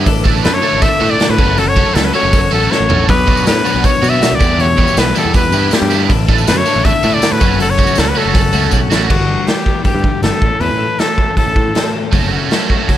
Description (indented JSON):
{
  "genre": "indie rock",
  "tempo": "159 BPM",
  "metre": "4/4",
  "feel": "straight",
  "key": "unclear",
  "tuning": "A4 = 440 Hz",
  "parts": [
    { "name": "mellow tonewheel organ", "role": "sustained chords", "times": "0.0-9.1 s", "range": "D4 to D6", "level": "-28 LUFS", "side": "equal", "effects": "none" },
    { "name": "crunchy overdriven guitar", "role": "riff", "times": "0.0-9.1, 12.1-13.0 s", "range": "E3 to A4", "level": "-19 LUFS", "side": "right 9 dB", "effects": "analog chorus, slapback echo" },
    { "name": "twelve-string electric guitar", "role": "riff", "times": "0.0-13.0 s", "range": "E2 to C#5", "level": "-20 LUFS", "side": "left 8 dB", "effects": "none" },
    { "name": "modern bright picked electric bass", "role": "bass", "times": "0.0-12.4 s", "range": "F#1 to B2", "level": "-17 LUFS", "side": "right 1 dB", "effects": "none" },
    { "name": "raw garage drum kit", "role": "drums", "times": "0.1-13.0 s", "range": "crash cymbal, hi-hat, kick drum, snare drum, toms", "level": "-15 LUFS", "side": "right 1 dB", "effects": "none" },
    { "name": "clear trumpet", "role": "melody", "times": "0.4-11.9 s", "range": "F#4 to E5", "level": "-16 LUFS", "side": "left 2 dB", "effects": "slapback echo" },
    { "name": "tambourine", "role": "percussion", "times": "3.3-9.1 s", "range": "none", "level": "-30 LUFS", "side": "left 10 dB", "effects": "none" }
  ],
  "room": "little or no reverb",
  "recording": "none",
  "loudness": "-10 LUFS",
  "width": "side -12 dB against mid",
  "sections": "0.0-9.1 A section; 9.1-13.0 B section",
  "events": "drum fill 2.7-3.1, 8.7-9.1",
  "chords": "0.1 Asus4; 1.4 F#m; 3.1 Bmadd9; 4.4 Em7; 6.1 Asus4; 7.4 F#m; 9.1 G6; 10.4 A; 12.1 F#m"
}